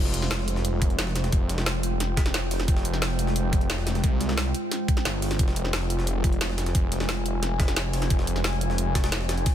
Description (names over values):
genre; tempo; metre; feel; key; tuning
dark technical drum and bass; 177 BPM; 4/4; straight; F minor; A4 = 436 Hz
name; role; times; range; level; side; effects
deep dark ambient pad; sustained chords; 0.0-9.5 s; Ab3 to Ab5; -31 LUFS; equal; chorus, built-in reverb, sidechain pumping
snarling distorted saw bass; bass; 0.0-9.4 s; F1 to C2; -27 LUFS; equal; distortion, tube saturation, sidechain pumping
drum and bass drum kit; drums; 0.1-9.5 s; hi-hat, snare drum; -30 LUFS; equal; overdrive
jungle sampler-style drum kit; drums; 0.1-9.5 s; hi-hat, snare drum; -37 LUFS; equal; none
electronic kick drum; drums; 0.8-9.5 s; none; -23 LUFS; equal; overdrive
room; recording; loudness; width
light reverb; dense, heavily limited modern master; -23 LUFS; side -11 dB against mid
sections
0.0-9.5 A section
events
none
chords
0.0 Fmadd9